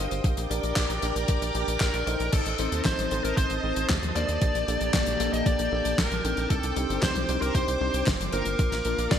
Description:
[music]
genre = italo disco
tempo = 115 BPM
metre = 4/4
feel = straight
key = G minor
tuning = A4 = 442 Hz
[part]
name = string machine, full ensemble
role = sustained chords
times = 0.0-9.2 s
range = Bb3 to Eb6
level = -33 LUFS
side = equal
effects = ensemble chorus
[part]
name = mellow tine electric piano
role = stabs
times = 0.0-9.2 s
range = Bb3 to G5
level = -32 LUFS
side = left 1 dB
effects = medium stereo tremolo
[part]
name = tight sequencer bass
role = bass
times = 0.0-9.2 s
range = G1 to Eb2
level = -31 LUFS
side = equal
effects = tube saturation
[part]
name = damped 70s drum kit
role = drums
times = 0.1-9.2 s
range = crash cymbal, handclaps, hi-hat, snare drum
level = -30 LUFS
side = left 1 dB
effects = high-pass filter on hats, small room ambience, high-pass filter on cymbals, high-pass filter on snare, high-pass filter on room, gated reverb
[part]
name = electronic kick drum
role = drums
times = 0.2-9.2 s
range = none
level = -26 LUFS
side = right 1 dB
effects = overdrive, small room ambience
[part]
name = smooth overdriven lead guitar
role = melody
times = 1.8-9.2 s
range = A4 to Eb5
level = -30 LUFS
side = left 1 dB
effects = ping-pong delay
[sound]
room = moderate plate reverb, RT60 1.4 s, studio ambience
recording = bright 1980s-style digital production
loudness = -24 LUFS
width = side -9 dB against mid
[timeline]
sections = 0.0-2.3 A section; 2.3-9.2 B section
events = filter sweep on tine electric piano 0.0-2.3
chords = 0.2 Gm/Bb; 2.3 Adim; 4.4 Gmadd9/Bb; 6.5 Cmadd9; 8.6 Bb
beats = | 0.24 0.77 1.29 1.81 | 2.33 2.85 3.37 3.90 | 4.42 4.94 5.46 5.98 | 6.50 7.03 7.55 8.07 | 8.59 9.11

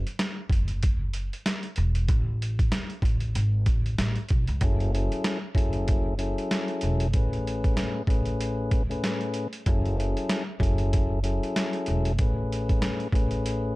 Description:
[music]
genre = hip hop, boom-bap hip-hop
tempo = 95 BPM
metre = 4/4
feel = swing 58% on 16ths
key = F# minor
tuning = A4 = 440 Hz
[part]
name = trip hop sampler-style drum kit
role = drums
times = 0.1-13.6 s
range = hi-hat, kick drum, snare drum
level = -26 LUFS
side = equal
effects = none
[part]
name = upright bass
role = bass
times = 0.5-13.8 s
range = E1 to C#2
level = -27 LUFS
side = equal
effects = none
[part]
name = tonewheel organ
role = accompaniment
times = 4.6-13.8 s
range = A2 to B4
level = -29 LUFS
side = left 2 dB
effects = stopped rotary speaker, high-pass filter, low-pass filter
[sound]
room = little or no reverb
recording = dark, warm production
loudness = -24 LUFS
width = side -20 dB against mid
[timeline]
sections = 0.0-13.8 A section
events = break 0.0-4.6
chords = 0.0 Esus2; 2.1 N.C.; 4.6 F#m7; 7.1 Amaj7; 9.7 F#m7; 12.2 Amaj7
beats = 0.19 0.82 1.45 | 2.08 2.72 3.35 3.98 | 4.61 5.24 5.87 6.51 | 7.14 7.77 8.40 9.03 | 9.66 10.29 10.93 11.56 | 12.19 12.82 13.45

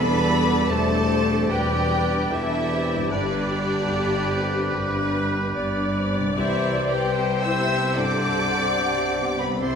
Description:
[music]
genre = cinematic, emotional film score for orchestra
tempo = 74 BPM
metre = 4/4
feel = rubato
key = unclear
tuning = A4 = 437 Hz
[part]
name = warm symphonic violin section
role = melody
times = 0.0-9.8 s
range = D5 to E6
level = -28 LUFS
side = left 1 dB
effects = none
[part]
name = clear oboe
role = second line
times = 0.0-9.8 s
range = A4 to D5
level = -31 LUFS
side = right 1 dB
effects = none
[part]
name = mellow hollow large flute ensemble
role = second line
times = 0.0-9.8 s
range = G4 to G5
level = -30 LUFS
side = left 2 dB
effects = none
[part]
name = rich symphonic violin section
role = second line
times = 0.0-9.8 s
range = D4 to E5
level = -31 LUFS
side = equal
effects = none
[part]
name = warm clarinet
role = second line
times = 0.0-9.8 s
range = G4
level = -32 LUFS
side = left 2 dB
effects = none
[part]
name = dark grand piano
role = accompaniment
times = 0.0-9.8 s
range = C2 to G4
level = -30 LUFS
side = left 2 dB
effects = none
[part]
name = rich symphonic viola section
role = accompaniment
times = 0.0-9.8 s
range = E4 to D5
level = -30 LUFS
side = right 1 dB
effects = none
[part]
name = mellow French horn section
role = sustained chords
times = 0.0-9.8 s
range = D3 to E4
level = -28 LUFS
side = left 1 dB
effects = none
[part]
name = concert harp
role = arpeggios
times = 0.0-9.8 s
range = E2 to B5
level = -32 LUFS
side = left 3 dB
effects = none
[part]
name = rich symphonic cello section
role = bass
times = 0.0-9.8 s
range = E2 to C3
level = -31 LUFS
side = right 1 dB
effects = none
[part]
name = warm symphonic double bass section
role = bass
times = 0.0-9.8 s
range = E1 to C2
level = -31 LUFS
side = right 1 dB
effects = none
[sound]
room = wet stone room reverb, RT60 1.3 s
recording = minimal, uncompressed stereo recording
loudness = -20 LUFS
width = side -6 dB against mid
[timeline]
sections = 0.0-9.8 A section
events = none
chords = 0.0 Em7; 3.1 G; 6.4 C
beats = 0.69 1.50 2.31 | 3.12 3.92 4.74 5.56 | 6.36 7.16 7.97 8.78 | 9.60

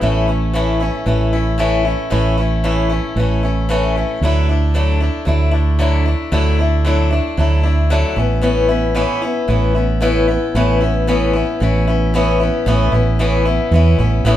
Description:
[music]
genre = folk rock and heartland rock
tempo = 114 BPM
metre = 4/4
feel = straight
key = unclear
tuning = A4 = 440 Hz
[part]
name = picked swing-style acoustic guitar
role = accompaniment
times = 0.0-14.4 s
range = A2 to E4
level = -17 LUFS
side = left 2 dB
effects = none
[part]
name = fingered electric bass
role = bass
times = 0.0-14.4 s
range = A1 to E2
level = -16 LUFS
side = right 1 dB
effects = none
[sound]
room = moderate large studio reverb, RT60 1.0 s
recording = band playing live in one room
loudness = -14 LUFS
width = side -12 dB against mid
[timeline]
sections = 0.0-12.7 A section; 12.7-14.4 B section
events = none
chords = 0.0 A; 4.2 Dadd9; 8.2 Aadd9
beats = | 0.03 0.55 1.08 1.60 | 2.12 2.65 3.17 3.70 | 4.22 4.75 5.27 5.80 | 6.32 6.85 7.38 7.90 | 8.43 8.96 9.49 10.02 | 10.54 11.07 11.60 12.13 | 12.66 13.19 13.72 14.25

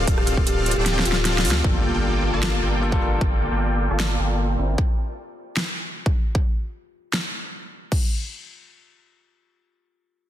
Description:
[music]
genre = future bass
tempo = 153 BPM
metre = 4/4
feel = half-time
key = unclear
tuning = A4 = 445 Hz
[part]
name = dense compressed supersaw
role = riff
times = 0.0-4.8 s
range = Bb3 to A5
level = -26 LUFS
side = equal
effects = sidechain pumping, low-pass filter, ping-pong delay
[part]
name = saturated sub bass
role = bass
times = 0.0-4.8 s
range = D1 to D2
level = -24 LUFS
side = equal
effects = sidechain pumping
[part]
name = big-room dance drum kit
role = drums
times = 0.1-8.0 s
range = crash cymbal, finger snaps, hi-hat, rim click, snare drum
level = -26 LUFS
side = equal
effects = overdrive
[part]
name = electronic kick drum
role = drums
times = 0.1-8.0 s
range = none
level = -21 LUFS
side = equal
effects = overdrive
[part]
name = kalimba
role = melody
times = 0.2-1.6 s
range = F4 to G4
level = -31 LUFS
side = left 4 dB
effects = sidechain pumping, digital delay
[part]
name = bell-like tine electric piano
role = accompaniment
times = 1.6-3.2 s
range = G3 to Bb4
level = -31 LUFS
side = left 2 dB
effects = sidechain pumping, ping-pong delay
[part]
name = impact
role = sound effects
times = 1.6-3.2 s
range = none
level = -32 LUFS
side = equal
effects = none
[sound]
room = light reverb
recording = dense, heavily limited modern master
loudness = -20 LUFS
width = side -12 dB against mid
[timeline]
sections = 0.0-1.6 A section; 1.6-7.9 B section; 7.9-10.3 C section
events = drop 0.0-1.6; drum fill 0.9-1.6; kick drops out 1.3-1.6; impact 1.6-3.2; filter sweep on supersaw synth 1.6-4.8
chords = 0.0 Dm7; 1.6 Gm9; 4.6 C9/G; 7.9 N.C.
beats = | 0.07 0.47 0.86 1.25 | 1.64 2.04 2.43 2.82 | 3.21 3.60 4.00 4.39 | 4.78 5.17 5.57 5.96 | 6.35 6.74 7.13 7.53 | 7.92

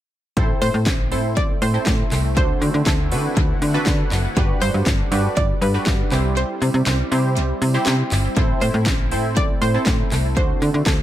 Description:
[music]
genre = dance-pop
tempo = 120 BPM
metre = 4/4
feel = straight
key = A dorian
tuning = A4 = 440 Hz
[part]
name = funky polysynth comp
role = accompaniment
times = 0.4-10.9 s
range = C4 to C5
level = -26 LUFS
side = right 2 dB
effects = chorus, sidechain pumping, tape echo
[part]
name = sweeping resonant pad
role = sustained chords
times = 0.4-11.0 s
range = D3 to F#5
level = -30 LUFS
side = right 1 dB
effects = chorus, sidechain pumping
[part]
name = slap-like FM bass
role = bass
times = 0.4-11.0 s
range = F#1 to D3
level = -20 LUFS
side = equal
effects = sidechain pumping
[part]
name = house drum kit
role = drums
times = 0.4-11.0 s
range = handclaps, hi-hat, kick drum, snare drum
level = -21 LUFS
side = equal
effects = overdrive, tape echo
[part]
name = analog pluck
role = melody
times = 0.6-11.0 s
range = A4 to D5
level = -27 LUFS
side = right 1 dB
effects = chorus, tape echo
[sound]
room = light reverb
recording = echo-heavy mix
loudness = -17 LUFS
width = side -12 dB against mid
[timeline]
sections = 0.4-11.0 A section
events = kick muted 6.4-8.4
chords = 0.4 Am; 2.4 D7; 4.4 Gmaj7; 6.1 C; 8.4 Am; 10.4 D7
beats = | 0.37 0.87 1.37 1.87 | 2.37 2.87 3.37 3.87 | 4.37 4.87 5.37 5.87 | 6.37 6.87 7.37 7.87 | 8.37 8.87 9.37 9.87 | 10.37 10.87

